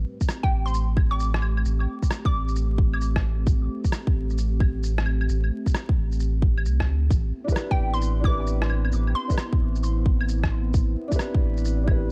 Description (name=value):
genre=future garage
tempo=132 BPM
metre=4/4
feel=swing 66% on 16ths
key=A minor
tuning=A4 = 435 Hz
part: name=warbly tape-like pad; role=sustained chords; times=0.0-12.1 s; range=A3 to G4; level=-37 LUFS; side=equal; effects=chorus, built-in reverb, sidechain pumping
part: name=warm sub bass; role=bass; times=0.0-12.1 s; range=A1 to D2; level=-26 LUFS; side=equal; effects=sidechain pumping
part: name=electronic kick drum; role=drums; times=0.2-12.0 s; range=none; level=-24 LUFS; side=equal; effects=vintage 12-bit sampler grit, studio reverb
part: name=electronic shaker, rim click and claves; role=drums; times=0.2-12.0 s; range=none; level=-35 LUFS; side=equal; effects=overdrive, vintage 12-bit sampler grit, studio reverb
part: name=hollow square pluck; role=melody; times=0.4-2.6, 7.7-9.5 s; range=G5 to D6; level=-35 LUFS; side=equal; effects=chorus, analog delay
part: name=felt-muted upright piano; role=accompaniment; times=7.4-12.1 s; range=D4 to B4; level=-35 LUFS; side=equal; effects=sidechain pumping, analog delay
room=little or no reverb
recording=dark, warm production, vinyl crackle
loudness=-24 LUFS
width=mono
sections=0.0-12.1 A section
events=none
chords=0.0 Am7; 7.1 Cmaj9/A